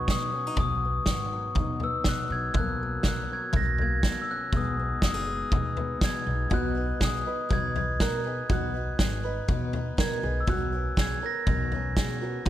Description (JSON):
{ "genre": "indie folk with a building arrangement", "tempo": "121 BPM", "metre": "4/4", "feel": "straight", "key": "B major", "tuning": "A4 = 440 Hz", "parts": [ { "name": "glockenspiel with rubber mallets", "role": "melody", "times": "0.0-12.5 s", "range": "C#6 to A#6", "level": "-31 LUFS", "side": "left 1 dB", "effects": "none" }, { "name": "fingerpicked acoustic archtop guitar", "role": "accompaniment", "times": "0.0-8.5 s", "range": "F#2 to A#4", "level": "-36 LUFS", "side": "left 3 dB", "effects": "none" }, { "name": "upright bass", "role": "bass", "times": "0.0-12.5 s", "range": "F#1 to B2", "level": "-32 LUFS", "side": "equal", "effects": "none" }, { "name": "natural country drum kit", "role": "drums", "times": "0.1-12.5 s", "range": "kick drum, snare drum, toms", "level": "-28 LUFS", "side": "equal", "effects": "none" }, { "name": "picked swing-style acoustic guitar", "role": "accompaniment", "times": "6.5-12.5 s", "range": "B2 to B4", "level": "-36 LUFS", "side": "left 5 dB", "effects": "none" }, { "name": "tenor ukulele", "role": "arpeggios", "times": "6.5-12.5 s", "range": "F#4 to B4", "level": "-35 LUFS", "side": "right 8 dB", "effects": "none" } ], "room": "light reverb", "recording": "none", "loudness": "-25 LUFS", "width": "side -13 dB against mid", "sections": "0.0-12.5 A section", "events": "none", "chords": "0.0 B; 2.6 F#/B; 4.5 G#m; 6.5 B; 10.5 F#/B", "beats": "0.08 | 0.57 1.07 1.56 2.06 | 2.55 3.04 3.54 4.04 | 4.53 5.03 5.52 6.01 | 6.51 7.01 7.50 8.00 | 8.49 8.99 9.49 9.98 | 10.48 10.98 11.47 11.97 | 12.47" }